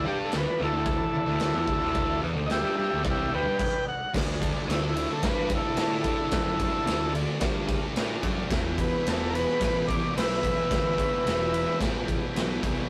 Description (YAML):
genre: garage rock duo or trio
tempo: 110 BPM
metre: 4/4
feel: straight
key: unclear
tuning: A4 = 442 Hz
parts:
  - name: overdriven combo organ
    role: melody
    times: 0.0-11.8 s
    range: E4 to G5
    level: -30 LUFS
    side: equal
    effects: none
  - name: combo organ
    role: sustained chords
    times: 0.0-12.9 s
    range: D4 to D5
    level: -44 LUFS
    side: equal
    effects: none
  - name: thick fuzz guitar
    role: riff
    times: 0.0-12.9 s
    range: E2 to G4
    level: -35 LUFS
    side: equal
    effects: distortion
  - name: fuzz picked electric bass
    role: bass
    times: 0.0-12.8 s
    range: E1 to A2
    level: -35 LUFS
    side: equal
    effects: overdrive
  - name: raw garage drum kit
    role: drums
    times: 0.3-12.8 s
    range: crash cymbal, kick drum, ride cymbal, snare drum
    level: -32 LUFS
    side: equal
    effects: none
room: moderate studio reverb, RT60 0.6 s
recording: rough rehearsal-room recording, warm saturation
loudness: -27 LUFS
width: mono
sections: 0.0-4.1 A section; 4.1-12.9 B section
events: transistor combo organ solo 0.0-4.1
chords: 0.0 D5; 3.6 N.C.; 4.1 D; 8.5 Em